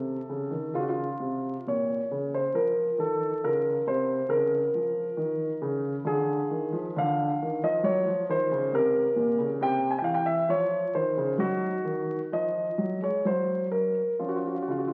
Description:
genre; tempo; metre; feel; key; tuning
classical, baroque-style suite movement for grand piano; 62-70 BPM; 3/4; rubato; Bb minor; A4 = 444 Hz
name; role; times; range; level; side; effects
warm grand piano; solo; 0.0-14.9 s; Bb2 to Ab5; -28 LUFS; equal; none
room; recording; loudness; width
wet recital hall reverb, RT60 1.4 s; very old 78 rpm record, vinyl crackle; -28 LUFS; mono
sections
0.0-14.9 A section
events
none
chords
0.0 F7/C; 0.7 Bbm; 2.6 F7; 3.4 Bbm; 6.1 Ddim; 7.9 Ebm; 8.7 C7; 10.5 F5; 11.4 Ebm; 13.2 N.C.; 14.2 Dbadd11

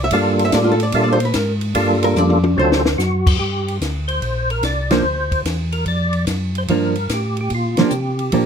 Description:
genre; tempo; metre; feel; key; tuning
soul jazz organ trio; 146 BPM; 4/4; swing 67% on 8ths; G dorian; A4 = 440 Hz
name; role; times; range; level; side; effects
archtop guitar, miked and amplified; accompaniment; 0.0-8.5 s; F3 to F5; -19 LUFS; right 2 dB; none
mellow tonewheel organ; bass; 0.0-8.5 s; Bb1 to C3; -21 LUFS; equal; chorus vibrato, slow rotary speaker
percussive tonewheel organ; melody; 0.1-8.5 s; F#3 to D5; -20 LUFS; equal; slow rotary speaker, chorus vibrato, plate reverb
compact cocktail drum kit; drums; 0.1-8.5 s; crash cymbal, hi-hat, kick drum, ride cymbal, snare drum, toms; -23 LUFS; left 1 dB; none
room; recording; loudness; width
light reverb; close, detailed microphones; -16 LUFS; side -7 dB against mid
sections
0.0-3.4 A section; 3.4-8.5 B section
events
hollow-body jazz guitar solo 0.0-3.4; drum fill 2.2-3.0; band accent 4.8, 7.7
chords
0.1 Gm7; 2.6 D7#9; 3.4 Gm7

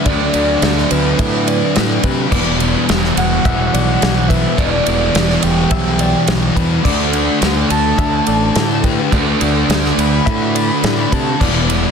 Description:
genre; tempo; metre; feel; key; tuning
rock, shoegaze and dream pop; 106 BPM; 4/4; straight; unclear; A4 = 439 Hz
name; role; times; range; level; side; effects
soft octave-layered synth lead; melody; 0.0-11.4 s; B4 to B5; -21 LUFS; right 2 dB; chorus, phaser, analog delay
direct-recorded clean electric guitar; arpeggios; 0.0-11.9 s; B4 to E5; -26 LUFS; left 12 dB; lush chorus, analog delay
overdriven semi-hollow guitar; riff; 0.0-11.9 s; D3 to F#4; -19 LUFS; right 13 dB; reverse reverb
thick fuzz guitar; riff; 0.0-11.9 s; E2 to D4; -18 LUFS; left 12 dB; distortion, lush chorus
growling fingered electric bass; bass; 0.1-11.8 s; E1 to C3; -19 LUFS; equal; overdrive
loose indie drum kit; drums; 0.1-11.8 s; crash cymbal, kick drum, ride cymbal, snare drum; -18 LUFS; right 1 dB; none
room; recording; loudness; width
small room reverb; dense, heavily limited modern master; -12 LUFS; side -6 dB against mid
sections
0.0-11.9 A section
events
none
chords
0.0 D6; 2.3 Em7; 6.9 D6; 11.4 Em7

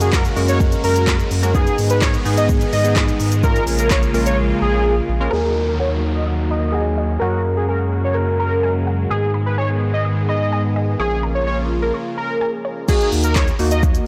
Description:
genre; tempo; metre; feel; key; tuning
dance-pop; 127 BPM; 4/4; straight; Eb minor; A4 = 436 Hz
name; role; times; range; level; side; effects
unison lead; melody; 0.0-13.8 s; Gb4 to Eb5; -25 LUFS; equal; sidechain pumping, low-pass filter, digital delay
funky polysynth comp; accompaniment; 0.0-14.1 s; Eb3 to Bb4; -28 LUFS; equal; chorus, sidechain pumping, low-pass filter
supersaw pad; sustained chords; 0.0-12.9 s; Db3 to Ab4; -28 LUFS; equal; phaser, sidechain pumping, low-pass filter
warm sub bass; bass; 0.0-14.0 s; Bb1 to Ab2; -22 LUFS; equal; sidechain pumping
deep house drum kit; drums; 0.0-4.4, 12.9-14.1 s; crash cymbal, handclaps, hi-hat, kick drum, shaker, snare drum; -21 LUFS; equal; none
warm grand piano; melody; 5.3-8.8 s; Ab4 to Bb4; -27 LUFS; equal; low-pass filter
unison pluck; arpeggios; 5.3-12.8 s; Db5 to Gb6; -35 LUFS; equal; none
downlifter; sound effects; 5.3-9.1 s; none; -36 LUFS; equal; none
room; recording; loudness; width
light reverb; blown-out, overdriven recording, overdrive; -18 LUFS; mono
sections
0.0-5.3 A section; 5.3-12.9 B section; 12.9-14.1 A section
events
drop 0.0-5.3, 12.9-14.1; silent gap 4.4-5.3; filter sweep 5.3-12.9; break 11.9-12.9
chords
0.0 Gbadd9; 1.5 Abm; 3.4 Bbm7; 5.3 Ebm; 7.2 Gbadd9; 9.1 Abm; 11.0 Bbm7; 12.9 Ebm

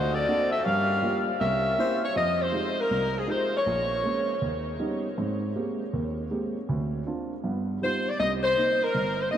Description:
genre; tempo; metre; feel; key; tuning
jazz; 159 BPM; 4/4; swing 65% on 8ths; F minor; A4 = 441 Hz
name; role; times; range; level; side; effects
warm saxophone section; melody; 0.0-4.6, 7.8-9.4 s; A3 to F5; -26 LUFS; left 1 dB; none
dark grand piano; accompaniment; 0.0-9.4 s; G1 to G4; -29 LUFS; right 2 dB; none
room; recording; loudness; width
wet huge ambient reverb, RT60 8.1 s; in a vast, echoing space; -24 LUFS; side -9 dB against mid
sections
0.0-2.2 A section; 2.2-9.4 B section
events
none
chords
0.0 D7b13; 0.7 Gm7b5; 1.4 C7b9; 2.2 Fm9; 3.7 Bbm7; 4.4 Ebaug7; 5.2 Abmaj9; 6.7 Dm7; 7.4 G7b13; 8.2 Cm7

